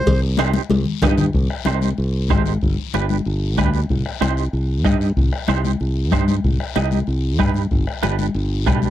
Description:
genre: latin, cumbia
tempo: 188 BPM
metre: 4/4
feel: straight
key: C harmonic minor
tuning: A4 = 442 Hz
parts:
  - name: modern bright fingered electric bass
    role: bass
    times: 0.1-8.9 s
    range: G1 to G2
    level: -19 LUFS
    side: equal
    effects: none
  - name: bombo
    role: percussion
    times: 0.1-8.8 s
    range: none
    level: -22 LUFS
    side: left 1 dB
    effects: none
  - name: congas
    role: percussion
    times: 0.1-8.9 s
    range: none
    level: -24 LUFS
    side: left 5 dB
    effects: none
  - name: cowbell and timbales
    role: percussion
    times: 0.1-1.2 s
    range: none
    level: -25 LUFS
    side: right 3 dB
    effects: none
  - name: guiro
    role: percussion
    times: 0.1-8.9 s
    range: none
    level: -36 LUFS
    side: left 22 dB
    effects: none
  - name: semi-hollow electric guitar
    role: accompaniment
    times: 0.4-8.9 s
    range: D4 to Eb5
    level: -23 LUFS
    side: right 18 dB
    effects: tremolo
room: little or no reverb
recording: dry, close 1970s-style studio recording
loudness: -17 LUFS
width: side -12 dB against mid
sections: 0.0-1.3 A section; 1.3-8.9 B section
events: drum fill 0.4-1.3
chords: 0.1 Cm; 2.6 G; 3.9 Cm; 7.7 G

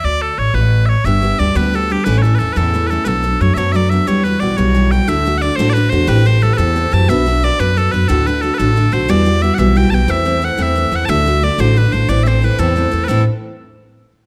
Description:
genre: celtic folk, Celtic jig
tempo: 120 BPM (dotted quarters)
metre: 6/8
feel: straight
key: E dorian, A dorian from 5.1 s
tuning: A4 = 440 Hz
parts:
  - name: loud bright bagpipes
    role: melody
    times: 0.0-13.2 s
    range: G4 to A5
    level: -20 LUFS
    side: equal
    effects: none
  - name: upright bass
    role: bass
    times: 0.0-13.2 s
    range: G1 to F#2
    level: -18 LUFS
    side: equal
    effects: none
  - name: picked steel-string acoustic guitar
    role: accompaniment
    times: 1.1-13.2 s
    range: D2 to B4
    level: -20 LUFS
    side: equal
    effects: none
room: light reverb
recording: close, detailed microphones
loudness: -14 LUFS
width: mono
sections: 0.0-5.1 A section; 5.1-13.1 B section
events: none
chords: 0.0 D5; 1.0 G; 2.1 A; 3.1 Bm7; 4.1 Emadd9; 5.1 D; 6.1 Am7; 7.1 Bm; 8.1 D; 9.1 Emadd9; 10.1 Am/E; 11.1 D; 12.1 Am

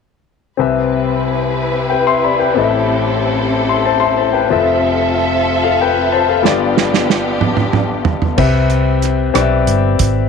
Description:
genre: slow gospel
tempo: 62 BPM (dotted quarters)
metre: 6/8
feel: straight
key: C major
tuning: A4 = 440 Hz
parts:
  - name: clear concert grand piano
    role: accompaniment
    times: 0.6-10.3 s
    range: F1 to C6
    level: -15 LUFS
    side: left 8 dB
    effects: none
  - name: warm studio string section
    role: sustained chords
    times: 0.6-8.4 s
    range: B3 to E5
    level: -18 LUFS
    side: right 2 dB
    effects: none
  - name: warm soul drum kit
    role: drums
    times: 6.5-10.1 s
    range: crash cymbal, hi-hat, kick drum, rim click, snare drum, toms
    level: -17 LUFS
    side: right 7 dB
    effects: none
  - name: hollow-body short-scale fingered electric bass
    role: bass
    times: 8.4-10.3 s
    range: G1 to C2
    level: -15 LUFS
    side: right 2 dB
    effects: none
room: moderate spring reverb, RT60 1.8 s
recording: 1960s-style stereo with parts hard left and right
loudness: -12 LUFS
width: side -6 dB against mid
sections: 0.6-8.4 A section; 8.4-10.3 B section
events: drum fill 6.4-8.4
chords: 0.6 Cmaj7; 2.6 Am7; 4.5 Fmaj7; 6.4 G7; 8.4 Cmaj7

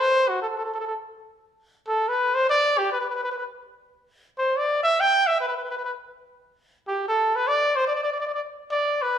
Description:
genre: calypso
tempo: 145 BPM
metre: 4/4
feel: straight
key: unclear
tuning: A4 = 440 Hz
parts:
  - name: warm trumpet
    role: solo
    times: 0.0-9.2 s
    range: F#4 to G5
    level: -21 LUFS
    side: equal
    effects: none
room: wet large studio reverb, RT60 1.4 s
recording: band playing live in one room, lossy compression artefacts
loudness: -21 LUFS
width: side -9 dB against mid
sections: 0.0-9.1 A section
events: trumpet solo 0.0-9.1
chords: none

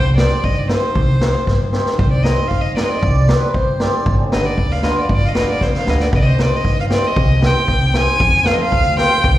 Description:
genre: klezmer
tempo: 116 BPM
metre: 2/4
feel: straight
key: C harmonic minor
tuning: A4 = 440 Hz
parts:
  - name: warm violin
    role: melody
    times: 0.0-9.4 s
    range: C5 to Ab5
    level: -20 LUFS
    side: left 1 dB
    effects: plate reverb, slapback echo
  - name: upright bass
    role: bass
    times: 0.0-9.4 s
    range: G1 to G2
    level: -17 LUFS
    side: equal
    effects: none
  - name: cimbalom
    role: accompaniment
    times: 0.2-9.1 s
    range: B3 to A4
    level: -22 LUFS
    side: equal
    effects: slapback echo
  - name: street-band drum kit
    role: drums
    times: 0.2-9.4 s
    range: kick drum, snare drum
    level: -18 LUFS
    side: equal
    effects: none
  - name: accordion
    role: second line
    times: 2.9-4.2 s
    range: B4 to Eb5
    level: -23 LUFS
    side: right 2 dB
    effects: light tremolo tuning, plate reverb, slapback echo
room: light reverb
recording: live gig heard through the venue's PA, recital hall reverb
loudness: -13 LUFS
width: side -14 dB against mid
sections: 0.0-2.0 A section; 2.0-9.4 B section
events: drum fill 1.5-2.0, 5.6-6.1; violin solo 2.0-9.4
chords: 0.0 Cm; 4.1 G; 6.1 Cm; 8.2 F

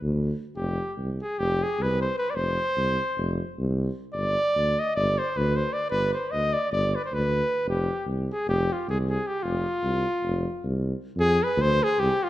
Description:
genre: balkan folk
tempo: 306 BPM (eighths)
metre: 9/8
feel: straight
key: F dorian sharp4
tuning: A4 = 440 Hz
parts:
  - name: mellow tuba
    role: bass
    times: 0.0-12.1 s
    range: F1 to F2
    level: -27 LUFS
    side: equal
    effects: none
  - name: clear flugelhorn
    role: melody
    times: 0.6-12.3 s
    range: F4 to Eb5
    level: -25 LUFS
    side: equal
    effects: none
room: moderate recital hall reverb, RT60 1.4 s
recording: dark, warm production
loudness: -23 LUFS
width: side -14 dB against mid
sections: 0.0-11.2 A section; 11.2-12.3 B section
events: none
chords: 0.0 N.C.; 0.6 F5; 4.1 G; 7.7 F5; 11.2 Dm7b5

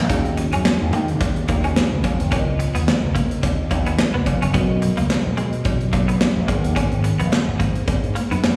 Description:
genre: early-eighties boogie funk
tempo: 108 BPM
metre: 4/4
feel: swing 56% on 16ths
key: Eb minor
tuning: A4 = 439 Hz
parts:
  - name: mellow FM electric piano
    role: accompaniment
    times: 0.0-8.6 s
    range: Cb4 to Cb6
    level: -31 LUFS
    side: equal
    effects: chorus, slapback echo
  - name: semi-hollow electric guitar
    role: riff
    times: 0.0-8.4 s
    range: Ab3 to Eb4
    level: -30 LUFS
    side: equal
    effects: ensemble chorus, slapback echo
  - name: slap bass with an envelope filter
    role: bass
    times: 0.0-8.4 s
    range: F1 to Eb3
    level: -23 LUFS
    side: equal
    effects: none
  - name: modern studio drum kit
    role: drums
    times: 0.1-8.6 s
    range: handclaps, hi-hat, kick drum, snare drum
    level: -24 LUFS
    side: equal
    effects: none
  - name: cowbell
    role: percussion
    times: 0.1-8.6 s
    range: none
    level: -34 LUFS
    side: equal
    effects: slapback echo
room: light reverb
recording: live gig heard through the venue's PA, recital hall reverb, small room ambience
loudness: -20 LUFS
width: mono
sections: 0.1-8.6 A section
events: none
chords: 0.1 Ebm11; 2.3 Db13; 4.5 Bmaj7; 6.5 Abm9

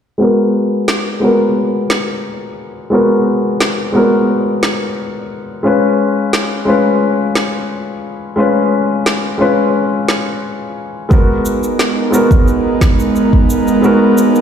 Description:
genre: organic downtempo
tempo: 88 BPM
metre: 4/4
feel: straight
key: G# dorian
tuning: A4 = 440 Hz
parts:
  - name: felt-muted upright piano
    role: accompaniment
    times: 0.2-14.4 s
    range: G#3 to B4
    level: -14 LUFS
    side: left 1 dB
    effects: sidechain pumping, low-pass filter, ping-pong delay
  - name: electronic snare drum and shaker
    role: drums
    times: 0.9-14.4 s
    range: none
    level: -19 LUFS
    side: equal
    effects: none
  - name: airy breathy pad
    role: sustained chords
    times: 11.1-14.4 s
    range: G#3 to A#4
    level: -13 LUFS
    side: right 3 dB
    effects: chorus, sidechain pumping
  - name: electronic kick drum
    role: drums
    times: 11.1-13.5 s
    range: none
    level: -10 LUFS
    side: equal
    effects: none
room: wet concert hall reverb, RT60 2.3 s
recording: played on a big sound system in a bare room, large studio reverb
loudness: -11 LUFS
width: side -8 dB against mid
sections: 0.2-14.4 A section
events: filter sweep on felt piano 0.2-14.4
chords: 0.2 G#m9; 5.7 C#7; 11.1 G#m9

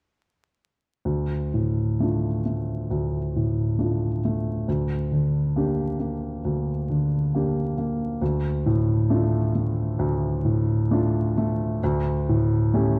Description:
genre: classical, romantic nocturne for solo piano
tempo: 67 BPM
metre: 4/4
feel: rubato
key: D minor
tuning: A4 = 439 Hz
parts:
  - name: clear baby grand piano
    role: solo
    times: 1.1-13.0 s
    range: D2 to G4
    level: -24 LUFS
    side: equal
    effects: none
room: wet recital hall reverb, RT60 1.5 s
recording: dark, warm production, vinyl crackle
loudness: -24 LUFS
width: mono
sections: 1.1-13.0 A section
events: none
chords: 1.1 Dm; 4.7 Gm/D; 8.2 Dm; 11.8 A7/D

